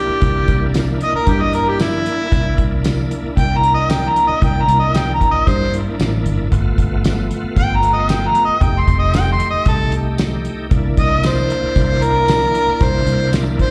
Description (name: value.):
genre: straight-eighth soul blues.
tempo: 114 BPM.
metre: 4/4.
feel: straight.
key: C mixolydian.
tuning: A4 = 440 Hz.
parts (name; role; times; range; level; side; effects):
clear harmonica; melody; 0.0-13.7 s; E4 to C6; -20 LUFS; equal; overdrive, slapback echo.
bright tonewheel organ; accompaniment; 0.0-13.7 s; A3 to G4; -26 LUFS; equal; slow rotary speaker, overdrive, chorus vibrato, slapback echo.
fingered electric bass; bass; 0.1-13.6 s; F1 to G2; -21 LUFS; equal; none.
damped 70s drum kit; drums; 0.2-13.7 s; hi-hat, kick drum, snare drum, tambourine; -21 LUFS; equal; none.
room: light reverb, small room ambience.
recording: live gig heard through the venue's PA, club reverb.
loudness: -16 LUFS.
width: mono.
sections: 0.0-13.7 A section.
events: harmonica solo 0.0-13.7.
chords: 0.0 C9; 6.5 G9; 8.6 F9; 10.7 C9.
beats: | 0.23 0.75 1.27 1.80 | 2.32 2.85 3.37 3.90 | 4.42 4.95 5.47 5.99 | 6.52 7.04 7.57 8.09 | 8.62 9.14 9.66 10.19 | 10.71 11.24 11.76 12.29 | 12.81 13.34.